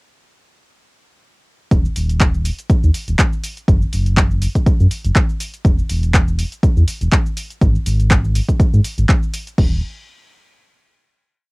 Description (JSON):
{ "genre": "deep house", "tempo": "122 BPM", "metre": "4/4", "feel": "swing 55% on 16ths", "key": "Eb minor", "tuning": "A4 = 440 Hz", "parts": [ { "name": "sub bass with octave", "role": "bass", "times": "1.7-9.8 s", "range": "Eb1 to Ab2", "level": "-16 LUFS", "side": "equal", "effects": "sidechain pumping" }, { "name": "electronic kick drum", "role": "drums", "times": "1.7-9.7 s", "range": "none", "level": "-15 LUFS", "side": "equal", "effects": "overdrive, cassette tape" }, { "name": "punchy analog drum machine", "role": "drums", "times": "1.7-9.7 s", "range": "crash cymbal, handclaps, hi-hat, shaker", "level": "-22 LUFS", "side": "equal", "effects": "overdrive, cassette tape" } ], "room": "little or no reverb", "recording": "home recording on cassette", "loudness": "-14 LUFS", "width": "side -28 dB against mid", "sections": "1.7-9.6 drop; 9.6-11.5 final note", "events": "drop 1.7-9.6", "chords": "none" }